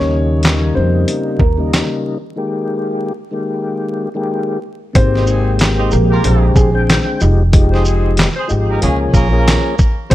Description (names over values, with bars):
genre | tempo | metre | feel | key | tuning
hip hop, boom-bap hip-hop | 93 BPM | 4/4 | swing 57% on 16ths | unclear | A4 = 439 Hz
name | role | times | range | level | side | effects
dark upright piano | melody | 0.0-10.1 s | Ab3 to Db5 | -21 LUFS | equal | high-pass filter, low-pass filter, digital delay
mellow tonewheel organ | accompaniment | 0.0-10.1 s | C3 to G5 | -18 LUFS | left 2 dB | overdrive, chorus vibrato, slow rotary speaker, high-pass filter, low-pass filter
upright bass | bass | 0.0-10.1 s | F1 to F2 | -14 LUFS | equal | none
dusty soul sampler-style drum kit | drums | 0.4-10.1 s | handclaps, hi-hat, kick drum, shaker, snare drum | -14 LUFS | equal | vintage 12-bit sampler grit
mellow horn section | stabs | 5.1-9.6 s | Ab3 to C5 | -23 LUFS | right 2 dB | high-pass filter, low-pass filter, digital delay
room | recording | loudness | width
small room ambience | vinyl crackle | -12 LUFS | side -15 dB against mid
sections
0.0-5.0 A section; 5.0-10.1 B section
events
break 2.4-5.0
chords
0.0 Eb7; 2.4 Ebadd11; 5.0 Abmaj9; 6.2 Bb13; 7.2 Fm9; 8.8 Db6